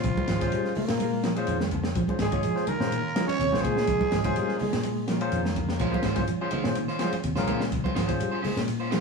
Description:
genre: afrobeat.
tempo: 125 BPM.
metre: 4/4.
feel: swing 54% on 16ths.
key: Bb minor.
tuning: A4 = 440 Hz.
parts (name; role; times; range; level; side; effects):
growling trumpet; melody; 0.0-5.1 s; F4 to Db5; -31 LUFS; left 1 dB; none.
trombone with bucket mute; second line; 0.0-5.1 s; F3 to Db4; -31 LUFS; right 6 dB; none.
semi-hollow electric guitar; arpeggios; 0.0-9.0 s; C3 to Ab3; -33 LUFS; equal; none.
fingered electric bass; bass; 0.0-9.0 s; Ab1 to Bb2; -31 LUFS; left 1 dB; none.
compact cocktail drum kit; drums; 0.0-9.0 s; hi-hat, kick drum, ride cymbal, snare drum; -31 LUFS; equal; none.
shekere; percussion; 0.0-9.0 s; none; -40 LUFS; right 3 dB; none.
congas; percussion; 0.2-9.0 s; none; -33 LUFS; right 1 dB; none.
bright trombone section; second line; 0.3-6.2 s; F3 to Bb3; -35 LUFS; left 2 dB; none.
barky tine electric piano; accompaniment; 0.4-8.4 s; Db4 to Eb5; -32 LUFS; left 5 dB; none.
electric guitar at the edge of break-up; stabs; 5.8-9.0 s; Ab3 to C5; -31 LUFS; right 2 dB; none.
room: moderate studio reverb, RT60 0.8 s.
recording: band playing live in one room, studio ambience.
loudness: -24 LUFS.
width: side -4 dB against mid.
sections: 0.0-9.0 A section.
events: none.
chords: 0.0 Bbm9.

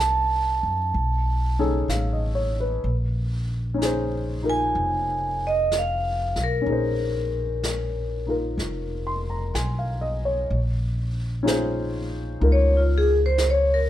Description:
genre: jazz ballad.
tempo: 63 BPM.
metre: 4/4.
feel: swing 68% on 8ths.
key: Bb minor.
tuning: A4 = 439 Hz.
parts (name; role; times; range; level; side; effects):
vibraphone with medium hard mallets; melody; 0.0-13.9 s; F4 to A5; -24 LUFS; equal; none.
warm upright piano; accompaniment; 0.0-13.9 s; C#4 to C6; -28 LUFS; left 2 dB; none.
upright bass; bass; 0.0-13.9 s; F1 to Gb2; -25 LUFS; equal; none.
jazz brush drum kit; drums; 0.0-13.9 s; brushed snare drum, hi-hat, snare drum; -35 LUFS; equal; none.
room: light reverb.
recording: none.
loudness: -22 LUFS.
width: side -12 dB against mid.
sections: 0.0-10.5 A section; 10.5-13.9 B section.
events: vibraphone solo 10.5-13.9.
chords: 0.0 Cm7; 0.9 B13; 2.8 Bbm11.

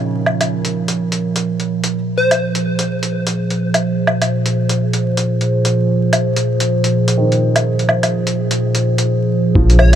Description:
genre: future garage.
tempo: 126 BPM.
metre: 4/4.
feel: swing 60% on 16ths.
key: unclear.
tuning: A4 = 440 Hz.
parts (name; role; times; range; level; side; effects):
warm upright piano; accompaniment; 0.0-2.0, 7.2-10.0 s; Db3 to F3; -25 LUFS; right 2 dB; sidechain pumping, ping-pong delay.
warbly tape-like pad; sustained chords; 0.0-10.0 s; Bb2 to Db5; -16 LUFS; right 1 dB; chorus, built-in reverb, sidechain pumping.
electronic woodblock and hi-hat; drums; 0.3-10.0 s; none; -18 LUFS; equal; overdrive.
plucky unison lead; melody; 2.2-2.4, 9.8-10.0 s; C5 to Db5; -20 LUFS; left 2 dB; dub echo.
dark detuned saw bass; bass; 9.6-10.0 s; Bb1; -9 LUFS; equal; sidechain pumping.
electronic kick drum; drums; 9.6-9.7 s; none; -13 LUFS; equal; overdrive.
room: light reverb, digital ambience.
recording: vinyl crackle, faint mains hum.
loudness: -14 LUFS.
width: side -10 dB against mid.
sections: 0.0-9.6 A section.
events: filter sweep on ambient pad 0.0-9.6.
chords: 0.0 Bbm; 1.9 Fm/Bb.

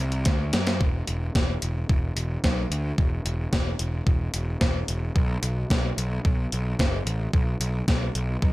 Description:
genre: indie rock.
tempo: 110 BPM.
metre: 4/4.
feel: straight.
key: unclear.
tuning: A4 = 440 Hz.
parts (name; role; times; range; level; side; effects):
fuzz picked electric bass; bass; 0.0-8.5 s; E1 to F#2; -26 LUFS; equal; overdrive.
gated 80s digital drum machine; drums; 0.1-8.5 s; hi-hat, kick drum, snare drum; -24 LUFS; equal; gated reverb, gated reverb snare.
room: little or no reverb.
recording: none.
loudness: -23 LUFS.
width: side -18 dB against mid.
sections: 0.8-8.5 A section.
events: drum fill 0.3-0.8.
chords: none.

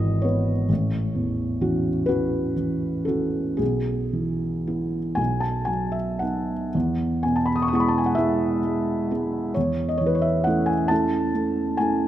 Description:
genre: classical, romantic nocturne for solo piano.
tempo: 37-45 BPM (dotted quarters).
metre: 6/8.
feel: rubato.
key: E major.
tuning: A4 = 440 Hz.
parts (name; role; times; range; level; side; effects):
felt-muted upright piano; solo; 0.0-12.1 s; G#1 to D#6; -21 LUFS; equal; none.
room: moderate concert hall reverb, RT60 2.0 s.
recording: close, detailed microphones.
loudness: -21 LUFS.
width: side -12 dB against mid.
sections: 0.0-6.7 A section; 6.7-12.1 A section.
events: none.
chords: 0.0 E/G#; 0.7 F#m7/A; 3.6 E/B; 5.2 B; 6.7 E.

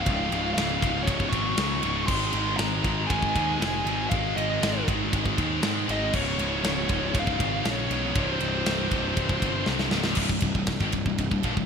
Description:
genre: heavy metal.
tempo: 119 BPM.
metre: 4/4.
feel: straight.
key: C phrygian.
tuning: A4 = 440 Hz.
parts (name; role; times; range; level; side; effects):
high-gain lead guitar; melody; 0.0-9.7 s; C5 to Db6; -31 LUFS; equal; distortion.
distorted electric guitar; riff; 0.0-11.7 s; C2 to Ab3; -30 LUFS; left 12 dB; overdrive.
high-gain distorted guitar; riff; 0.0-11.7 s; C2 to Ab4; -34 LUFS; equal; distortion.
scooped high-gain guitar; riff; 0.0-11.7 s; C2 to Ab3; -31 LUFS; right 12 dB; distortion.
fuzz picked electric bass; bass; 0.0-11.7 s; C1 to Ab2; -30 LUFS; equal; overdrive.
tight metal drum kit; drums; 0.1-11.7 s; crash cymbal, kick drum, ride cymbal, snare drum; -29 LUFS; equal; gated reverb.
room: moderate lush hall reverb, RT60 1.7 s, studio ambience.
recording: bright 1980s-style digital production.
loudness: -23 LUFS.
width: side -6 dB against mid.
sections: 0.0-10.2 A section; 10.2-11.7 B section.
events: drum fill 9.7-10.2.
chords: 0.0 Db; 2.1 Ab; 6.1 Db; 8.2 Cm.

